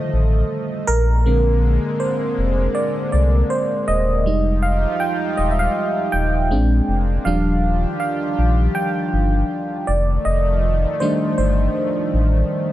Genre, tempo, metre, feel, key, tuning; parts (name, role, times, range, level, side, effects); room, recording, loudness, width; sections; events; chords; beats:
contemporary R&B; 80 BPM; 4/4; swing 58% on 16ths; A4 = 440 Hz
FM electric piano; accompaniment; 0.0-12.7 s; D3 to G5; -20 LUFS; right 1 dB; chorus
chorused pulse-width pad; sustained chords; 0.0-12.7 s; D3 to Eb5; -26 LUFS; left 2 dB
downlifter; sound effects; 0.0-1.3 s; barely audible
sub bass with octave; bass; 0.1-12.4 s; Eb1 to C2; -18 LUFS; equal
little or no reverb; -16 LUFS; side -14 dB against mid
0.0-12.7 A section
FM electric piano solo 0.0-12.7
0.0 F13; 0.9 Bb9; 4.3 Fm9; 6.5 Bb9; 7.3 Ebmaj9; 9.9 F13
0.51 | 1.26 2.01 2.76 3.51 | 4.26 5.01 5.76 6.51 | 7.26 8.01 8.76 9.51 | 10.26 11.01 11.76 12.51